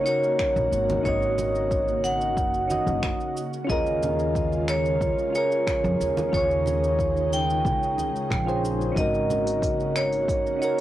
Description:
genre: sunset chillout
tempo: 91 BPM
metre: 4/4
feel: straight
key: unclear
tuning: A4 = 440 Hz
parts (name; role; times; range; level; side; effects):
- vibraphone with hard mallets; melody; 0.0-10.8 s; C#5 to G5; -25 LUFS; right 1 dB; cassette tape, analog delay
- soft electric-piano-like synth keys; accompaniment; 0.0-10.8 s; C#4 to D#5; -29 LUFS; equal; chorus, auto-pan, cassette tape
- ethereal airy pad; sustained chords; 0.0-10.8 s; C#3 to F#4; -34 LUFS; left 1 dB; ensemble chorus, built-in reverb, cassette tape
- deep house drum kit; drums; 0.1-10.8 s; finger snaps, hi-hat, shaker; -36 LUFS; equal; cassette tape
- electronic kick drum; drums; 0.4-10.4 s; none; -30 LUFS; equal; cassette tape
- upright bass; bass; 0.6-10.4 s; F#1 to E#2; -29 LUFS; left 1 dB; tube saturation
- congas; percussion; 0.9-9.4 s; none; -34 LUFS; right 3 dB; none
room: light reverb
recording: home recording on cassette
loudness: -22 LUFS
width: side -13 dB against mid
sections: 0.0-10.8 A section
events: none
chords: 0.0 G#9sus4; 3.4 D#9sus4; 9.0 G#9sus4

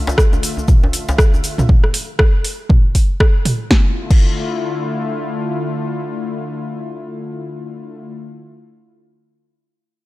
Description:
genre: afro house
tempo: 119 BPM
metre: 4/4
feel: swing 58% on 16ths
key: D minor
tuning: A4 = 445 Hz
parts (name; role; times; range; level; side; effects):
- warm analog pad; sustained chords; 0.0-8.1 s; D3 to E5; -24 LUFS; left 2 dB; chorus, sidechain pumping
- djembe; percussion; 0.1-1.7 s; none; -22 LUFS; equal; none
- tube shaker; percussion; 0.1-1.7 s; none; -30 LUFS; left 4 dB; none
- deep house drum kit; drums; 0.2-4.2 s; crash cymbal, hi-hat, rim click, snare drum, toms; -19 LUFS; right 1 dB; overdrive
- electronic kick drum; drums; 0.2-4.2 s; none; -12 LUFS; equal; overdrive
room: small room ambience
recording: dark, warm production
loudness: -14 LUFS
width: side -18 dB against mid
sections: 0.0-3.7 A section; 3.7-7.7 B section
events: drop 0.0-3.7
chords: 0.0 Dm

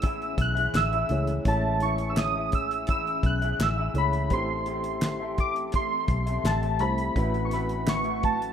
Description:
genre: indie pop, bedroom pop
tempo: 84 BPM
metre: 4/4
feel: straight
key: unclear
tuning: A4 = 440 Hz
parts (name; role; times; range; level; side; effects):
- warbly lo-fi synth keys; melody; 0.0-8.5 s; A5 to F#6; -28 LUFS; right 2 dB; wide subtle chorus, plate reverb
- electric guitar through a small old amp; accompaniment; 0.0-8.5 s; A3 to E5; -34 LUFS; left 4 dB; lush chorus, vibrato effect, plate reverb
- mellow reed electric piano; accompaniment; 0.0-8.5 s; G#3 to C#5; -35 LUFS; right 2 dB; fast tremolo, cassette tape, plate reverb
- ethereal airy pad; sustained chords; 0.0-8.5 s; E3 to C#4; -38 LUFS; left 1 dB; ensemble chorus, built-in reverb, phaser, plate reverb
- vintage muted fingered electric bass; bass; 0.0-8.5 s; A1 to C#2; -29 LUFS; equal; none
- cloth-damped thuddy drum kit; drums; 0.0-8.5 s; hi-hat, kick drum, snare drum; -28 LUFS; equal; none
- group handclap; percussion; 0.7-8.0 s; none; -39 LUFS; right 3 dB; none
room: moderate studio reverb, RT60 0.6 s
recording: rough home demo mix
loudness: -24 LUFS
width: side -8 dB against mid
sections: 0.0-8.5 A section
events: none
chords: 0.0 Amaj7; 4.3 C6/A; 7.2 A69

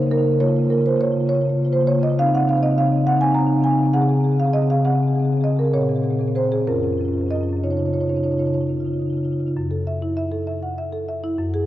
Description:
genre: classical, contemporary piece for solo marimba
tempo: 60-70 BPM (dotted quarters)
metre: 6/8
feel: rubato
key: Db major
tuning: A4 = 438 Hz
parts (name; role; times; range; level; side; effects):
- marimba with medium mallets; solo; 0.0-11.7 s; Gb2 to Bb5; -18 LUFS; equal; none
room: wet cathedral reverb, RT60 5.7 s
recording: worn, warbling old tape, cassette tape, warbly pitch drift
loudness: -18 LUFS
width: side -14 dB against mid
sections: 0.0-9.6 A section; 9.6-11.7 B section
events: none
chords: 0.4 Dbmaj13; 2.2 Dbsus2; 5.7 Bbm9; 6.7 Gbmaj7; 7.6 Dbadd9; 9.6 Gbm7

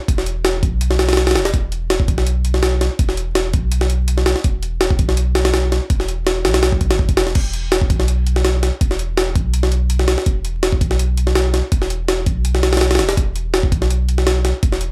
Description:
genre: drum and bass, jungle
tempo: 165 BPM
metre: 4/4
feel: straight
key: unclear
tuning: A4 = 440 Hz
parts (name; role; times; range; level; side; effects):
- saturated sub bass; bass; 0.1-14.9 s; E1 to B1; -21 LUFS; equal; none
- jungle sampler-style drum kit; drums; 0.1-14.9 s; crash cymbal, hi-hat, kick drum, snare drum; -19 LUFS; equal; none
room: digital ambience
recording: vinyl crackle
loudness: -17 LUFS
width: mono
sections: 0.0-7.4 A section; 7.4-14.9 A section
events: drop 0.0-7.4, 7.4-14.9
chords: none

